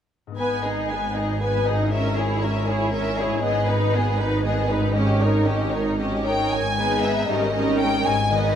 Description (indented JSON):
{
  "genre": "classical, dramatic, fast romantic movement for symphony orchestra",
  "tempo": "78 BPM (dotted quarters)",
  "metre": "6/8",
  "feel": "straight",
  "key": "G# minor",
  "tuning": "A4 = 439 Hz",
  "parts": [
    { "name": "concert harp", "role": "arpeggios", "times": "0.3-8.6 s", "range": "G#2 to B4", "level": "-30 LUFS", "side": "left 5 dB", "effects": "none" },
    { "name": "warm symphonic violin section", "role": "melody", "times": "0.4-8.6 s", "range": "B4 to G#5", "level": "-26 LUFS", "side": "left 2 dB", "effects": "none" },
    { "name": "rich symphonic violin section", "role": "second line", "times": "0.4-8.6 s", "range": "D#4 to B4", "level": "-27 LUFS", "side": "left 2 dB", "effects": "none" },
    { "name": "rich symphonic viola section", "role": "accompaniment", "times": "0.4-8.6 s", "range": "D#3 to E4", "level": "-26 LUFS", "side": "right 2 dB", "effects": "none" },
    { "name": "rich symphonic cello section", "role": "bass", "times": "0.4-8.6 s", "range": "G#2", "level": "-28 LUFS", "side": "right 1 dB", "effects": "none" },
    { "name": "rich symphonic double bass section", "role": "bass", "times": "0.4-8.6 s", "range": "G#1", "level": "-28 LUFS", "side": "right 2 dB", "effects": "none" }
  ],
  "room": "moderate scoring stage reverb, RT60 1.9 s",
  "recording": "none",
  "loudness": "-20 LUFS",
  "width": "side -9 dB against mid",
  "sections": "0.4-6.5 A section; 6.5-8.6 B section",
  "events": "none",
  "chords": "0.4 G#m; 5.0 D#7/G#; 6.5 G#m; 7.3 D#7/G#",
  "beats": "| 0.38 1.15 | 1.92 2.68 | 3.44 4.20 | 4.96 5.74 | 6.53 7.29 | 8.06"
}